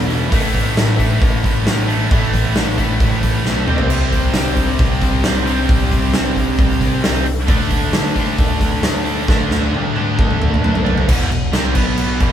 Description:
hard rock; 134 BPM; 4/4; straight; A4 = 439 Hz
distorted electric guitar; riff; 0.0-12.3 s; E2 to D4; -23 LUFS; right 7 dB; overdrive
high-gain distorted guitar; riff; 0.0-12.3 s; E2 to D4; -24 LUFS; equal; distortion
overdriven semi-hollow guitar; riff; 0.0-12.3 s; E2 to D4; -24 LUFS; left 6 dB
overdriven picked electric bass; bass; 0.0-12.3 s; E1 to F#2; -21 LUFS; equal
huge arena drum kit; drums; 0.1-12.3 s; crash cymbal, hi-hat, kick drum, snare drum, splash cymbal, toms; -17 LUFS; equal
moderate small room reverb, RT60 0.5 s; band playing live in one room; -14 LUFS; side -10 dB against mid
0.0-11.1 A section; 11.1-12.3 B section
drum fill 3.4-3.9, 9.3-11.1
0.3 A5; 3.7 C5; 7.5 D5; 11.1 Em; 11.8 B5

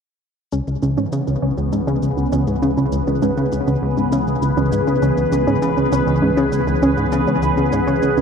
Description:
ambient, sequencer-driven space music; 100 BPM; 4/4; straight; C# minor; A4 = 440 Hz
phased analog pad; sustained chords; 0.5-8.2 s; E3 to B4; -20 LUFS; equal; phaser, chorus
wide unison pluck; arpeggios; 0.5-8.2 s; C#4; -23 LUFS; right 2 dB; auto-pan, ping-pong delay
plucky analog bass; riff; 0.5-8.2 s; C#2 to C#3; -20 LUFS; left 1 dB; ping-pong delay
analog drone; bass; 1.6-8.2 s; C#2; -27 LUFS; equal; chorus
electronic shaker and toms; percussion; 0.5-8.2 s; -40 LUFS; left 9 dB; ping-pong delay
pulsing gated texture; texture; 0.5-8.2 s; barely audible
moderate huge ambient reverb, RT60 8.1 s; dark, warm production; -16 LUFS; side -6 dB against mid
0.5-8.2 A section
filter sweep on synth arpeggio sound 0.5-8.2
0.5 C#m7

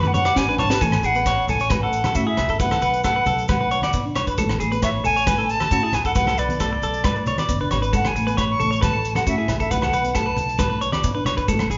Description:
highlife guitar band; 135 BPM; 4/4; straight; A major; A4 = 441 Hz
bright reedy silver concert flute; melody; 0.0-10.8 s; D5 to C#6; -25 LUFS; equal
mellow electric guitar; accompaniment; 0.0-11.6 s; E3 to E4; -32 LUFS; equal
clean electric guitar; arpeggios; 0.0-11.8 s; F#4 to D5; -28 LUFS; equal
upright bass; bass; 0.0-11.8 s; F#1 to B2; -29 LUFS; equal
congas; percussion; 0.0-11.7 s; -32 LUFS; equal
maracas; percussion; 0.0-11.8 s; -42 LUFS; equal
tight funk drum kit; drums; 0.1-11.8 s; hi-hat, kick drum, rim click, snare drum, toms; -28 LUFS; equal
agogo bells; percussion; 0.3-11.7 s; -37 LUFS; equal
wet large studio reverb, RT60 1.4 s; band playing live in one room, nothing above 7.5 kHz; -21 LUFS; mono
0.8-11.8 A section
drum fill 0.4-0.8
0.0 Bm7; 0.8 Amaj7; 2.6 Bm7; 4.4 Amaj7; 6.2 Bm7; 7.9 Amaj7; 9.7 Bm7

